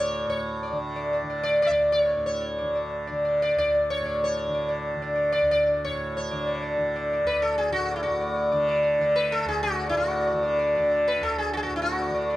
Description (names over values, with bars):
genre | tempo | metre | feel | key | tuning
indian classical, Hindustani | 187 BPM | 3/4 | straight | unclear | A4 = 440 Hz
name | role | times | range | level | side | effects
sitar | melody | 0.0-12.4 s | E4 to E5 | -23 LUFS | equal | none
tanpura | drone | 0.0-12.4 s | D2 to D3 | -31 LUFS | right 1 dB | none
room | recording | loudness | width
moderate recital hall reverb, RT60 1.5 s | close, detailed microphones | -22 LUFS | side -16 dB against mid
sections
0.3-8.1 A section; 8.1-12.4 B section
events
speeding up 0.0-12.4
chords
none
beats
| 0.26 0.59 0.92 | 1.25 1.58 1.92 | 2.25 2.57 2.90 | 3.23 3.56 3.88 | 4.21 4.53 4.86 | 5.18 5.50 5.83 | 6.15 6.47 6.79 | 7.11 7.43 7.75 | 8.07 8.39 8.71 | 9.02 9.34 9.65 | 9.97 10.28 10.60 | 10.91 11.22 11.54 | 11.85 12.16